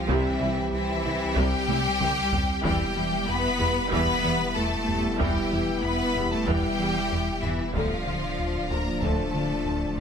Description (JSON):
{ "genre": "cinematic, hybrid orchestral and electronic film score", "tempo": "94 BPM", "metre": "4/4", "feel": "straight", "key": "unclear", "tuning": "A4 = 441 Hz", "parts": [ { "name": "rich symphonic violin section", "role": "melody", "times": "0.0-10.0 s", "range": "E5 to B5", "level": "-31 LUFS", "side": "left 4 dB", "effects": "none" }, { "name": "bright symphonic violin section", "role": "second line", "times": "0.0-10.0 s", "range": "E4 to B4", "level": "-32 LUFS", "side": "left 1 dB", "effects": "none" }, { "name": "airy breathy pad", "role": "sustained chords", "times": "0.0-10.0 s", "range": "D3 to G5", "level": "-33 LUFS", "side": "equal", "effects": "chorus" }, { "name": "warm French horn section", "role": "sustained chords", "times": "0.0-10.0 s", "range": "F3 to G4", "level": "-33 LUFS", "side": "left 3 dB", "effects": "none" }, { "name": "rich symphonic cello section", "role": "bass", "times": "0.0-10.0 s", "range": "E3 to B3", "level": "-32 LUFS", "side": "right 2 dB", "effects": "none" }, { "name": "saturated sub bass", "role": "bass", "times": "0.0-10.0 s", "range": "D1 to C2", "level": "-36 LUFS", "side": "equal", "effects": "none" }, { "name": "warm symphonic viola section", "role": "accompaniment", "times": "0.1-9.8 s", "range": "C3 to F4", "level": "-32 LUFS", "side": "right 1 dB", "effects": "none" }, { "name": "round analog bass", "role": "riff", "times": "0.1-10.0 s", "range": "C2 to E3", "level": "-32 LUFS", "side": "left 1 dB", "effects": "none" }, { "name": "rich symphonic double bass section", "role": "bass", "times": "0.1-9.7 s", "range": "C2 to E2", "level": "-34 LUFS", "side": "right 3 dB", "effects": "none" }, { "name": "taiko ensemble", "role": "drums", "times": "0.1-10.0 s", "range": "none", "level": "-33 LUFS", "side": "equal", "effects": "none" } ], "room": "light reverb", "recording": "close, detailed microphones", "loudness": "-23 LUFS", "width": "side -7 dB against mid", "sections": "0.0-10.0 A section", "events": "drum fill 1.7-2.6", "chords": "0.0 C; 2.6 Em; 7.8 Dm" }